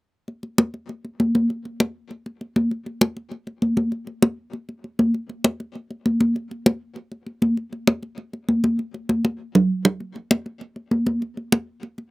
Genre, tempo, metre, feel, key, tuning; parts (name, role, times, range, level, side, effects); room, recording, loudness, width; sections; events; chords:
latin; 198 BPM; 4/4; straight
congas; percussion; 0.3-12.1 s; -19 LUFS; equal
little or no reverb; recorded outdoors, with no room sound; -21 LUFS; side -22 dB against mid
0.3-10.0 A section; 10.0-12.1 B section
drum fill 9.1-10.0